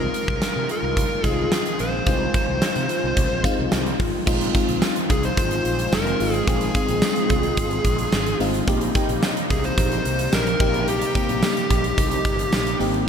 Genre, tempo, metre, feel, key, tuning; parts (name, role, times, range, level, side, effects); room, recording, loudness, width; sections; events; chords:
1980s-style pop; 109 BPM; 4/4; straight; A4 = 441 Hz
fuzz lead guitar; melody; 0.0-12.8 s; G4 to C5; -25 LUFS; equal; distortion, digital delay
FM electric piano with soft pad layer; accompaniment; 0.0-13.1 s; Ab3 to Ab4; -26 LUFS; left 1 dB; chorus, phaser
phased analog pad; sustained chords; 0.0-13.1 s; C3 to F4; -31 LUFS; equal; phaser, chorus
fretless electric bass; bass; 0.0-13.1 s; F1 to C3; -27 LUFS; equal; lush chorus
huge arena drum kit; drums; 0.1-13.1 s; crash cymbal, hi-hat, kick drum, snare drum, tambourine; -22 LUFS; equal; gated reverb
moderate lush hall reverb, RT60 2.4 s; bright 1980s-style digital production; -19 LUFS; side -7 dB against mid
0.0-4.3 A section; 4.3-13.1 B section
0.0 Ab6; 4.3 Fm7; 8.7 Eb6/Bb; 10.6 Cm7/Bb